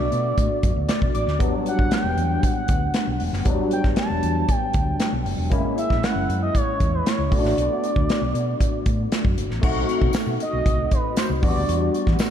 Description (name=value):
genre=polished 1980s jazz-funk pop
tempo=117 BPM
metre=4/4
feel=straight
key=E minor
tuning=A4 = 440 Hz
part: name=expressive synth lead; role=melody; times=0.0-11.9 s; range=B4 to A5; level=-27 LUFS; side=right 2 dB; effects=chorus, tape echo
part: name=barky tine electric piano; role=accompaniment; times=0.0-12.3 s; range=F#3 to D6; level=-25 LUFS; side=left 2 dB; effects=ensemble chorus
part: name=hollow-body short-scale fingered electric bass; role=bass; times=0.0-12.2 s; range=E1 to E3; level=-26 LUFS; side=equal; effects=none
part: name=modern studio drum kit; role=drums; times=0.1-12.3 s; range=crash cymbal, hi-hat, kick drum, snare drum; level=-23 LUFS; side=equal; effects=none
part: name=tambourine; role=percussion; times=10.1-12.3 s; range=none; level=-42 LUFS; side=right 12 dB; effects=none
room=moderate church reverb, RT60 3.3 s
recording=dreamy mix soaked in reverb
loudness=-19 LUFS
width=side -9 dB against mid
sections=0.0-9.6 A section; 9.6-12.3 B section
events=tine electric piano fill 0.6-1.4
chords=0.0 Bm7; 1.4 Em7; 5.5 F#7; 7.3 Bm7; 9.6 B7b9; 11.4 Em9